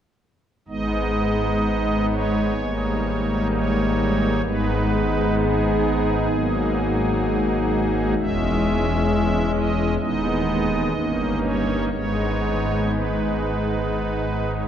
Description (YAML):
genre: classical, chorale-style piece for pipe organ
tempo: 64 BPM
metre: 4/4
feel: uneven beats, rubato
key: G# minor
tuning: A4 = 441 Hz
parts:
  - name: pipe organ, strings celeste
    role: solo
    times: 0.7-14.7 s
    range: D#1 to E5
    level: -20 LUFS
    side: equal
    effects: none
room: wet cathedral reverb, RT60 4.5 s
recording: dark, warm production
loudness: -19 LUFS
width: side -9 dB against mid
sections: 0.7-14.7 A section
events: none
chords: 0.7 G#m; 2.6 D#7/G#; 4.4 G#m; 6.3 D#m/G#; 8.2 C#m/E; 10.0 G#m/D#; 10.9 D#7/G; 11.9 G#m